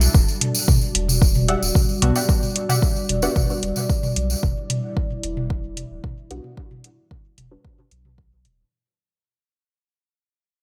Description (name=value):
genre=dub techno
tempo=112 BPM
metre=4/4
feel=straight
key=E minor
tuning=A4 = 440 Hz
part: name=dark analog pad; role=sustained chords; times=0.0-8.7 s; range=G3 to E5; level=-31 LUFS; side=equal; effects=chorus, sidechain pumping
part: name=warm sub bass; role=bass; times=0.0-8.6 s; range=D1 to B1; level=-26 LUFS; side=equal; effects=sidechain pumping
part: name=tambourine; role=percussion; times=0.0-4.4 s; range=none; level=-29 LUFS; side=equal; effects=none
part: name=electronic kick drum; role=drums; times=0.1-8.3 s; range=none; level=-21 LUFS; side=equal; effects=none
part: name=electronic hi-hat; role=drums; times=0.4-8.6 s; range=none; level=-26 LUFS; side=equal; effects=none
part: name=electronic toms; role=percussion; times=0.4-8.6 s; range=none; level=-29 LUFS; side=equal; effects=overdrive, sidechain pumping on toms, sidechain pumping on perc, gated reverb
part: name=filtered dub chord stab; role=riff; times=1.5-3.3 s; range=G4 to F#5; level=-32 LUFS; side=equal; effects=lush chorus, sidechain pumping, dub echo
part: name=filtered dub chord stab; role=stabs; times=2.0-7.8 s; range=G3 to F#4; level=-31 LUFS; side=equal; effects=phaser, sidechain pumping, dub echo
room=light reverb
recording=bright 1980s-style digital production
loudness=-21 LUFS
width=mono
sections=0.1-8.7 A section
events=fade-out 0.1-8.7; filter sweep on synth stab 0.1-8.7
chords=0.1 Em9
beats=| 0.15 0.68 1.22 1.75 | 2.29 2.82 3.36 3.90 | 4.43 4.97 5.50 6.04 | 6.57 7.11 7.65 8.18